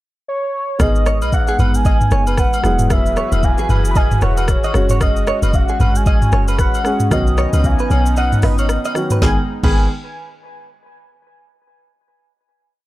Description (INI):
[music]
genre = afrobeats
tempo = 114 BPM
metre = 4/4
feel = swing 58% on 16ths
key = G# minor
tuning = A4 = 440 Hz
[part]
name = warm velvety synth lead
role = melody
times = 0.3-9.9 s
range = C#5 to B5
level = -22 LUFS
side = equal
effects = chorus, analog delay
[part]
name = dark concert grand piano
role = accompaniment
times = 0.8-9.9 s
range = D#3 to G#4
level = -25 LUFS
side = equal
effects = none
[part]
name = warm analog pad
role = sustained chords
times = 0.8-9.5 s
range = E3 to B4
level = -25 LUFS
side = left 1 dB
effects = chorus
[part]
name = deep log drum bass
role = bass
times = 0.8-9.9 s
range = E1 to C#2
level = -17 LUFS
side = equal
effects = none
[part]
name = afro-pop drum kit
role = drums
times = 0.8-9.7 s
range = crash cymbal, hi-hat, kick drum, rim click, shaker, snare drum, toms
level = -17 LUFS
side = equal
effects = none
[part]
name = agogo bells and woodblock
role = percussion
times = 0.8-9.9 s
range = none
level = -28 LUFS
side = left 2 dB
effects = none
[part]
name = direct-recorded clean electric guitar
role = riff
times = 1.1-9.9 s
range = G#4 to D#5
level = -26 LUFS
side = right 5 dB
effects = lush chorus, analog delay
[sound]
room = little or no reverb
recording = dry, gritty hardware recording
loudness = -13 LUFS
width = side -16 dB against mid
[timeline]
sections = 0.0-0.8 pickup bar; 0.8-9.2 chorus; 9.2-11.3 final chord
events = kick muted 8.2-9.2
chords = 0.0 N.C.; 0.8 G#m; 2.6 Eadd9; 4.7 F#sus2; 7.1 Badd9; 9.2 G#m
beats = 0.27 | 0.80 1.32 1.85 2.38 | 2.90 3.43 3.96 4.48 | 5.01 5.54 6.06 6.59 | 7.11 7.64 8.17 8.69 | 9.22 9.75